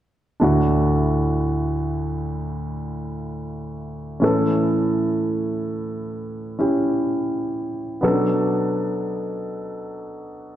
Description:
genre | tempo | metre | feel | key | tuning
pop | 63 BPM | 4/4 | straight | D major | A4 = 441 Hz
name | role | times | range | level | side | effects
warm grand piano | accompaniment | 0.4-10.6 s | D2 to A4 | -20 LUFS | equal | none
room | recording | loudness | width
wet scoring stage reverb, RT60 1.8 s | dark, warm production | -20 LUFS | side -12 dB against mid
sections
0.4-10.6 A section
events
none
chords
0.4 Dadd9; 4.2 A; 8.0 Bm7

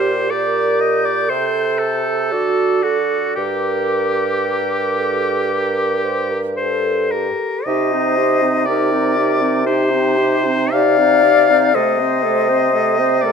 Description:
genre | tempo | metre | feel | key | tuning
classical, slow romantic movement for wind quintet | 52-62 BPM | 4/4 | rubato | unclear | A4 = 438 Hz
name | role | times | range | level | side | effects
clear oboe | second line | 0.0-13.3 s | F#4 to F5 | -19 LUFS | left 3 dB | none
bright clarinet | accompaniment | 0.0-13.3 s | Eb4 to C5 | -22 LUFS | right 12 dB | none
warm French horn | accompaniment | 0.0-13.3 s | A3 to C5 | -24 LUFS | equal | none
dark bassoon | bass | 0.0-13.3 s | G2 to D3 | -22 LUFS | right 4 dB | none
mellow silver concert flute | melody | 0.3-13.3 s | G4 to G6 | -20 LUFS | left 9 dB | none
room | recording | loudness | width
moderate recital hall reverb, RT60 1.5 s | none | -14 LUFS | side -6 dB against mid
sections
0.0-7.7 A section; 7.7-13.3 B section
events
none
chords
0.0 Gm/Bb; 1.3 Am7/C; 2.3 D; 3.4 Gm; 7.7 Cm; 11.8 Adim/C

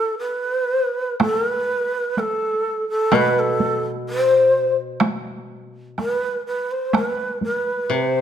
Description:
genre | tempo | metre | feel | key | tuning
japanese traditional, Japanese chamber music | 63 BPM | 2/4 | uneven beats, rubato | unclear | A4 = 440 Hz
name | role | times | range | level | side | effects
breathy long shakuhachi | melody | 0.0-8.2 s | A4 to C5 | -20 LUFS | equal | none
taiko ensemble | percussion | 1.2-7.6 s | none | -22 LUFS | right 2 dB | none
koto | accompaniment | 3.1-8.2 s | B2 to C3 | -24 LUFS | left 1 dB | none
room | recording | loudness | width
moderate recital hall reverb, RT60 1.5 s | minimal, uncompressed stereo recording | -18 LUFS | side -9 dB against mid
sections
0.0-1.2 A section; 1.2-8.2 B section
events
none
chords
none

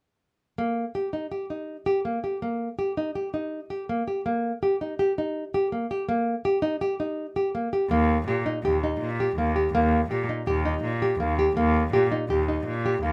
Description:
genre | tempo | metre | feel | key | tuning
contemporary instrumental, chamber music in an uneven meter | 164 BPM | 5/4 | straight | Eb major | A4 = 440 Hz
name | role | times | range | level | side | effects
nylon-string guitar | arpeggios | 0.6-13.1 s | Bb3 to G4 | -27 LUFS | equal | none
rich cello | bass | 7.9-13.1 s | Eb2 to Bb2 | -29 LUFS | equal | none
room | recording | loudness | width
moderate studio reverb, RT60 0.5 s | none | -26 LUFS | mono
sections
0.6-7.9 A section; 7.9-13.1 B section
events
none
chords
0.6 Eb

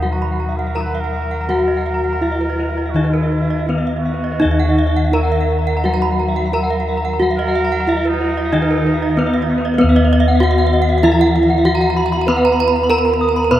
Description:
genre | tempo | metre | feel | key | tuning
Balinese gamelan | 82-97 BPM | 4/4 | straight | Eb pelog | A4 = 440 Hz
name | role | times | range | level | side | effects
gamelan-type bronze metallophone | melody | 0.0-13.6 s | Cb4 to Cb5 | -18 LUFS | right 1 dB | none
trumpet with straight mute | second line | 0.0-9.7 s | Cb4 to Eb5 | -29 LUFS | right 3 dB | none
gamelan-type bronze metallophone | accompaniment | 0.0-13.6 s | Eb3 to Cb4 | -24 LUFS | left 2 dB | none
gamelan-type bronze metallophone | arpeggios | 0.0-13.6 s | Cb5 to Eb6 | -23 LUFS | left 2 dB | none
gamelan-type bossed gongs | bass | 0.0-13.6 s | Eb2 to Cb5 | -19 LUFS | left 1 dB | none
gamelan-type bronze metallophone | arpeggios | 0.1-13.5 s | Bb4 to Cb6 | -24 LUFS | right 5 dB | none
room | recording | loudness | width
moderate huge ambient reverb, RT60 9.2 s | in a vast, echoing space | -14 LUFS | side -12 dB against mid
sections
0.0-9.8 A section; 9.8-13.6 B section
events
none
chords
none

